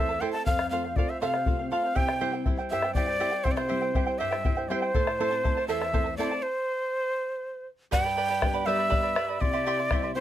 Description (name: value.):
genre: andean folk, Andean ensemble.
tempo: 80 BPM (dotted quarters).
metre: 6/8.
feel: straight.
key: unclear.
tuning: A4 = 439 Hz.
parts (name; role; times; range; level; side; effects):
breathy quena; melody; 0.0-10.2 s; C5 to A5; -28 LUFS; equal; none.
charango; accompaniment; 0.0-10.2 s; E4 to C6; -31 LUFS; right 5 dB; none.
nylon-string guitar; accompaniment; 0.0-10.2 s; E2 to F4; -34 LUFS; left 3 dB; none.
bombo; percussion; 0.2-10.0 s; none; -28 LUFS; left 2 dB; none.
room: little or no reverb.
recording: close, detailed microphones.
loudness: -25 LUFS.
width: side -12 dB against mid.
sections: 0.0-7.9 A section; 7.9-10.2 B section.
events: stop 6.4-7.9.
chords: 0.5 F; 2.0 C; 4.9 Am; 6.4 N.C.; 7.9 G; 9.4 C.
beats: | 0.47 1.22 | 1.97 2.71 | 3.46 4.20 | 4.95 5.69 | 6.44 7.18 | 7.93 8.67 | 9.42 10.17.